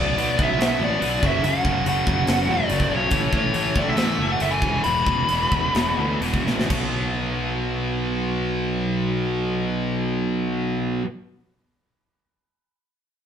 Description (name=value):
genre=hard rock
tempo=121-143 BPM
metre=4/4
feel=straight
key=B minor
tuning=A4 = 439 Hz
part: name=dark smooth lead guitar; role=melody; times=0.0-6.2 s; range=C#5 to B5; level=-23 LUFS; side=equal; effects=overdrive
part: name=high-gain distorted guitar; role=riff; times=0.0-11.1 s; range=E2 to B3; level=-24 LUFS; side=equal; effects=distortion
part: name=fuzz picked electric bass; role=bass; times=0.0-11.0 s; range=E1 to D2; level=-28 LUFS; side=equal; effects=overdrive
part: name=tight metal drum kit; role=drums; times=0.2-6.8 s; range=crash cymbal, hi-hat, kick drum, snare drum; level=-25 LUFS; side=right 1 dB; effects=none
room=moderate studio reverb, RT60 0.8 s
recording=band playing live in one room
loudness=-20 LUFS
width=side -8 dB against mid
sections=0.0-6.7 A section; 6.7-10.7 B section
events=slowing down 3.1-6.7; drum fill 6.5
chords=0.0 Bm; 1.2 F#5; 3.1 A; 4.6 E5; 6.7 B5